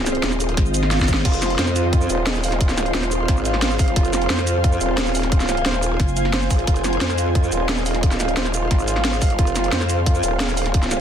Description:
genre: dark technical drum and bass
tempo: 177 BPM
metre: 4/4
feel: straight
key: F minor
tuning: A4 = 439 Hz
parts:
  - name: dark analog pad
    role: sustained chords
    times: 0.0-11.0 s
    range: C4 to F5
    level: -28 LUFS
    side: right 1 dB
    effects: chorus, phaser, sidechain pumping
  - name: growl bass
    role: bass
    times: 0.0-11.0 s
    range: Eb1 to F2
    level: -23 LUFS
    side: equal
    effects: chorus, tube saturation, sidechain pumping
  - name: ethereal airy pad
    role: texture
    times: 0.0-11.0 s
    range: F4 to Ab5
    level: -26 LUFS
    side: right 1 dB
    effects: ensemble chorus, built-in reverb, sidechain pumping
  - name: drum and bass drum kit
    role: drums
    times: 0.1-11.0 s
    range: crash cymbal, hi-hat, shaker, snare drum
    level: -24 LUFS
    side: equal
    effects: small room reverb
  - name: pulsing pluck wobble bass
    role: bass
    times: 0.6-1.2, 6.0-6.5 s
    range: Gb1 to Ab1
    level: -21 LUFS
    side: equal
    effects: distortion, chorus
  - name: electronic kick drum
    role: drums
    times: 0.6-10.8 s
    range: none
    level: -18 LUFS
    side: equal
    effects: small room reverb
  - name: swell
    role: sound effects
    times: 0.7-1.2 s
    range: none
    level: -30 LUFS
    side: right 3 dB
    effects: none
  - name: felt-muted upright piano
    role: arpeggios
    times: 1.2-11.0 s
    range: F4 to F5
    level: -27 LUFS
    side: right 4 dB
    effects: sidechain pumping, ping-pong delay
room: light reverb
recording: dense, heavily limited modern master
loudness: -17 LUFS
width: side -9 dB against mid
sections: 0.0-11.0 A section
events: swell 0.7-1.2; drum fill 0.9-1.2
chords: 0.0 F5

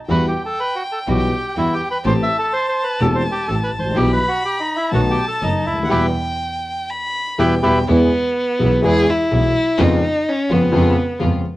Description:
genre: tango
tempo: 125 BPM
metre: 4/4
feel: rubato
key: E harmonic minor, E major from 7.9 s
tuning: A4 = 439 Hz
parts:
  - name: bandoneon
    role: melody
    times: 0.1-7.8 s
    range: D#4 to E5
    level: -20 LUFS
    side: equal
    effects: none
  - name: warm violin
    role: second line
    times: 0.1-11.2 s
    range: B3 to B5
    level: -22 LUFS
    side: equal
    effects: none
  - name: dark grand piano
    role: accompaniment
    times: 0.1-11.4 s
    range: E1 to G#4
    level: -19 LUFS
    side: left 2 dB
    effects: none
  - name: rich chamber string section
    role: stabs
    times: 0.1-11.4 s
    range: G3 to G4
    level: -27 LUFS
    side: right 1 dB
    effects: none
  - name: clear double bass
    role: bass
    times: 0.1-11.4 s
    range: E1 to E#2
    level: -21 LUFS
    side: right 2 dB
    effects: none
room: light reverb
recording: worn, warbling old tape, cassette tape, warbly pitch drift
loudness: -15 LUFS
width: side -17 dB against mid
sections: 0.0-7.9 A section; 7.9-11.6 B section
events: band accent 5.9-7.9; violin solo 7.9-11.6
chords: 0.1 Emadd9; 2.1 Am7; 4.0 Em/B; 4.9 B7; 5.9 Em; 7.9 E; 9.8 C#7/E#

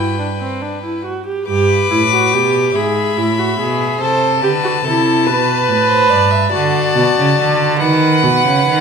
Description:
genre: classical, baroque-style fugue for string quartet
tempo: 47 BPM (dotted quarters)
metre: 6/8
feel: straight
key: G major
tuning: A4 = 443 Hz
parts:
  - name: rich violin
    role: melody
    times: 0.0-8.8 s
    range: F#5 to D6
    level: -18 LUFS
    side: left 10 dB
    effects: none
  - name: rich violin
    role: second line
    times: 0.0-8.8 s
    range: A4 to F#5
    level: -21 LUFS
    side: left 3 dB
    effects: none
  - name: warm viola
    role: accompaniment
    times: 0.0-8.8 s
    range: C4 to B4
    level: -16 LUFS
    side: right 3 dB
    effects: none
  - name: rich cello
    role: bass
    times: 0.0-8.8 s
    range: G2 to D#3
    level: -18 LUFS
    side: right 3 dB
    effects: none
room: moderate recital hall reverb, RT60 1.6 s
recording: minimal, uncompressed stereo recording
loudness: -12 LUFS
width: side -6 dB against mid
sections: 0.0-1.5 A section; 1.5-8.8 B section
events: none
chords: 0.0 G; 2.8 E/G#; 4.0 Am/C; 5.3 G; 6.5 D; 7.8 B

